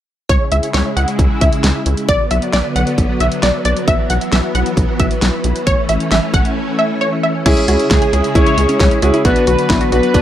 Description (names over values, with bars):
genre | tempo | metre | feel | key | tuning
synth-pop | 134 BPM | 4/4 | straight | unclear | A4 = 439 Hz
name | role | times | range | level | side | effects
wide unison pluck | second line | 0.3-7.3 s | C#5 to F#5 | -19 LUFS | equal | analog chorus, analog delay
string machine, violins | sustained chords | 0.3-10.2 s | C#3 to E4 | -20 LUFS | equal | ensemble chorus
rubbery square bass | bass | 0.3-10.2 s | A1 to C#2 | -17 LUFS | equal | tube saturation
pop drum kit | drums | 0.3-10.2 s | crash cymbal, hi-hat, kick drum, snare drum | -16 LUFS | equal | none
warm concert grand piano | accompaniment | 7.5-10.2 s | B3 to G#4 | -16 LUFS | equal | none
wide unison pluck | arpeggios | 7.5-10.2 s | C#4 to G#4 | -21 LUFS | equal | none
mellow synth brass | melody | 7.9-10.2 s | G#4 to C#5 | -17 LUFS | left 2 dB | chorus, phaser
room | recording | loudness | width
little or no reverb | dry, gritty hardware recording | -12 LUFS | side -11 dB against mid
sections
0.3-7.5 A section; 7.5-10.2 B section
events
none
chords
0.3 C#m; 2.1 Bm; 3.9 Esus2/B; 5.7 A; 7.5 C#m; 9.2 Bm